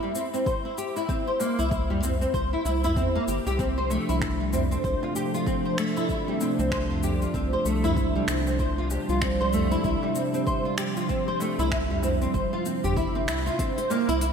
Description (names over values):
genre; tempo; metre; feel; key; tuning
organic downtempo; 96 BPM; 4/4; swing 60% on 16ths; unclear; A4 = 441 Hz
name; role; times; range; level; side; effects
flamenco guitar; arpeggios; 0.0-14.3 s; G3 to C5; -26 LUFS; equal; ensemble chorus, ping-pong delay
darbuka; percussion; 0.0-14.1 s; none; -37 LUFS; equal; none
afro-pop drum kit; drums; 0.2-14.3 s; finger snaps, hi-hat, shaker; -36 LUFS; equal; none
electronic kick drum; drums; 0.5-13.7 s; none; -31 LUFS; equal; none
round analog bass; bass; 1.6-14.3 s; G1 to E2; -28 LUFS; equal; none
warm analog pad; sustained chords; 3.6-13.6 s; C3 to D4; -29 LUFS; right 1 dB; chorus, vintage 12-bit sampler grit, sidechain pumping
room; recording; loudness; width
wet lush hall reverb, RT60 2.5 s; dreamy mix soaked in reverb; -23 LUFS; side -7 dB against mid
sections
0.0-13.6 A section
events
none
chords
0.0 C; 3.6 Dm7/C; 13.6 C7